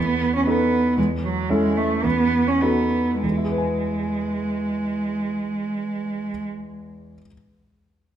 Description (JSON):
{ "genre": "quick classical-period movement for piano quartet", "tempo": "95-122 BPM", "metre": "2/4", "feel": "rubato", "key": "E major", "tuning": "A4 = 440 Hz", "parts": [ { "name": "rich cello", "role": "second line", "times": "0.0-6.4 s", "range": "F#3 to C#4", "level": "-22 LUFS", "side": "right 2 dB", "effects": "none" }, { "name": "clear concert grand piano", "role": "accompaniment", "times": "0.0-7.3 s", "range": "E2 to G#5", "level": "-26 LUFS", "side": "left 1 dB", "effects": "none" } ], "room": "wet recital hall reverb, RT60 1.6 s", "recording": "none", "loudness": "-20 LUFS", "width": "side -10 dB against mid", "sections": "0.0-3.2 A section; 3.2-5.7 B section", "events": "slowing down 0.5-3.2", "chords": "0.0 B7/E; 1.0 A/E; 2.0 B7/E; 3.2 E", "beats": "0.47 | 0.98 1.50 | 2.04 2.62 | 3.23 3.84 | 4.46 5.07" }